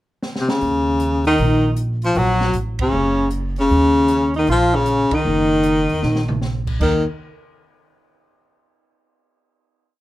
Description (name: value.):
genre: jazz, small-group swing and bop.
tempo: 155 BPM.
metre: 4/4.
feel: swing 66% on 8ths.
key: Eb minor.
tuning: A4 = 439 Hz.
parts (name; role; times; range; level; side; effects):
open jazz drum kit; drums; 0.2-6.9 s; crash cymbal, hi-hat, kick drum, ride cymbal, snare drum, toms; -27 LUFS; right 1 dB; none.
bright baritone saxophone; melody; 0.4-7.0 s; C3 to Gb3; -18 LUFS; left 2 dB; plate reverb.
upright bass; bass; 0.6-7.0 s; Gb1 to Eb2; -21 LUFS; right 1 dB; none.
warm tenor saxophone; second line; 1.3-7.0 s; Db4 to Gb4; -22 LUFS; right 2 dB; none.
room: moderate club reverb, RT60 0.6 s.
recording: dark, warm production.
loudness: -16 LUFS.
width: side -16 dB against mid.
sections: 0.0-0.6 pickup bar; 0.6-6.8 A section; 6.8-8.4 final note.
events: drum fill 0.2-0.6, 6.0-6.4; band accent 2.7, 5.1.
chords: 0.0 N.C.; 0.6 Eb5; 2.2 Gbm; 3.7 Ebm7; 6.8 N.C..